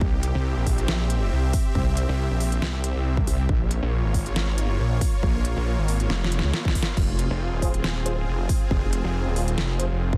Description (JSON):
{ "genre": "heavy wobble dubstep", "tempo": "138 BPM", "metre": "4/4", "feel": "swing 54% on 16ths, half-time", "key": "F minor", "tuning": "A4 = 441 Hz", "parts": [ { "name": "supersaw pad", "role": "sustained chords", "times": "0.0-10.2 s", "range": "Bb3 to E5", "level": "-34 LUFS", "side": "equal", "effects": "sidechain pumping" }, { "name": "wobble bass", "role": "bass", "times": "0.0-9.0 s", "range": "F1 to Db2", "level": "-26 LUFS", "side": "equal", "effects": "chorus, overdrive" }, { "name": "electronic kick drum", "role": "drums", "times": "0.0-10.2 s", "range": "none", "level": "-26 LUFS", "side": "equal", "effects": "none" }, { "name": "dubstep drum kit", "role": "drums", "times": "0.2-9.9 s", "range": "crash cymbal, hi-hat, snare drum", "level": "-32 LUFS", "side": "equal", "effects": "none" }, { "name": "snarling distorted saw bass", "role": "bass", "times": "0.3-10.2 s", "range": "Eb1 to C2", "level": "-26 LUFS", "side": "equal", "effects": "overdrive" }, { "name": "dark brass ensemble", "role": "stabs", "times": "7.6-9.9 s", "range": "F4 to C5", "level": "-36 LUFS", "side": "equal", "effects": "dub echo" } ], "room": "little or no reverb", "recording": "dense, heavily limited modern master", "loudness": "-24 LUFS", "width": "mono", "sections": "0.0-10.2 A section", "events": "drum fill 6.1-7.0", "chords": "0.0 C; 3.5 Bbm; 7.0 Fm" }